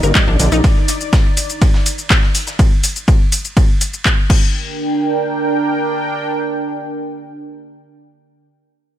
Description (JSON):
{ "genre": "melodic techno", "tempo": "123 BPM", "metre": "4/4", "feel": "straight", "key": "G minor", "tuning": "A4 = 440 Hz", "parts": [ { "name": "sweeping resonant pad", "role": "sustained chords", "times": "0.0-8.5 s", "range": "D4 to Bb5", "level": "-20 LUFS", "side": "right 2 dB", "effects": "chorus, sidechain pumping" }, { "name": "analog pluck", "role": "arpeggios", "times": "0.0-0.6 s", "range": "D3 to Bb4", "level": "-21 LUFS", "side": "left 2 dB", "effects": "chorus, sidechain pumping, ping-pong delay" }, { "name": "gritty driven synth bass", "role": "bass", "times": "0.0-0.6 s", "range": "G1 to Bb1", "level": "-14 LUFS", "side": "equal", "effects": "sidechain pumping" }, { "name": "deep house drum kit", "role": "drums", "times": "0.0-4.4 s", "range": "crash cymbal, handclaps, hi-hat, ride cymbal, shaker", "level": "-19 LUFS", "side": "left 1 dB", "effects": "overdrive, sidechain pumping on hats, studio reverb, sidechain pumping on perc, sidechain pumping on cymbals" }, { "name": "dusty soul sampler-style drum kit", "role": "drums", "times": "0.0-2.6 s", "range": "hi-hat, ride cymbal, snare drum", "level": "-28 LUFS", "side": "equal", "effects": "overdrive, high-pass filter on snare, studio reverb, sidechain pumping on cymbals, high-pass filter on cymbals, sidechain pumping on hats, high-pass filter on hats, high-pass filter on room" }, { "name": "electronic kick drum", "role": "drums", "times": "0.2-4.4 s", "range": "none", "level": "-12 LUFS", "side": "equal", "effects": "studio reverb" } ], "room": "digital ambience", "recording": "none", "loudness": "-13 LUFS", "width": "side -12 dB against mid", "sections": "0.0-4.5 A section; 4.5-8.4 B section", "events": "drop 0.0-4.5", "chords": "0.0 Cm7 (rootless); 4.3 Gm", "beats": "0.15 | 0.64 1.13 1.62 2.10 | 2.59 3.08 3.57 4.05 | 4.54 5.03 5.52 6.01 | 6.49 6.98 7.47 7.96" }